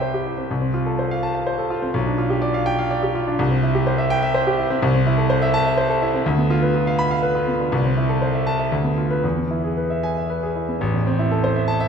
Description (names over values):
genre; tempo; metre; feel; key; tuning
classical, virtuoso piano study; 124 BPM; 3/4; rubato; C major, A minor from 4.8 s; A4 = 440 Hz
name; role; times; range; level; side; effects
clear concert grand piano; solo; 0.0-11.9 s; A1 to B5; -18 LUFS; equal; none
room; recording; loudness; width
wet scoring stage reverb, RT60 2.0 s; recorded in a church or concert hall; -18 LUFS; side -6 dB against mid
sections
0.0-10.8 A section; 10.8-11.9 B section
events
none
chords
0.0 C; 0.5 F/C; 1.9 G7/B; 3.4 C; 4.8 Am/C; 6.3 Bdim/D; 7.7 Am/C; 8.7 Bdim/D; 9.2 E; 10.8 Am